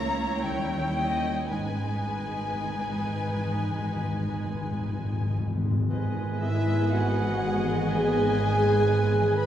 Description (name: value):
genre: classical, slow romantic movement for symphony orchestra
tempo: 53-63 BPM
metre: 4/4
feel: rubato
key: G# minor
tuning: A4 = 439 Hz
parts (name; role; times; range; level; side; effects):
- rich studio violin section; melody; 0.0-9.5 s; A#4 to D#5; -42 LUFS; left 3 dB; none
- mellow hollow silver concert flute; second line; 0.0-9.5 s; E5 to B5; -35 LUFS; left 2 dB; none
- rich studio violin section; second line; 0.0-9.5 s; E5 to B5; -36 LUFS; left 2 dB; none
- rich studio viola section; accompaniment; 0.0-9.5 s; B3 to C#5; -35 LUFS; right 2 dB; none
- concert harp; arpeggios; 0.0-9.5 s; G#2 to D#4; -38 LUFS; left 4 dB; none
- rich studio cello section; bass; 0.0-9.5 s; G#2 to A#3; -32 LUFS; right 2 dB; none
- rich studio double bass section; bass; 0.0-9.5 s; G#1 to D#2; -32 LUFS; right 2 dB; none
- timpani; percussion; 1.5-7.4 s; G#2; -31 LUFS; left 1 dB; none
- bright clarinet; second line; 5.9-9.5 s; B4; -36 LUFS; equal; none
- dark cor anglais; second line; 5.9-9.5 s; G#5; -36 LUFS; right 2 dB; none
- warm tuba; bass; 5.9-9.5 s; G#1; -35 LUFS; right 2 dB; none
- dark French horn section; sustained chords; 6.4-9.5 s; E4 to B4; -26 LUFS; left 1 dB; none
room: wet scoring stage reverb, RT60 1.6 s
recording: heard from further back in the room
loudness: -24 LUFS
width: side -10 dB against mid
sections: 0.0-5.9 A section; 5.9-9.5 A section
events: timpani fill 1.5-5.9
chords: 0.4 D#7b9; 1.5 G#m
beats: 0.44 | 1.51 2.63 3.73 4.82 | 5.91 6.93 7.92 8.89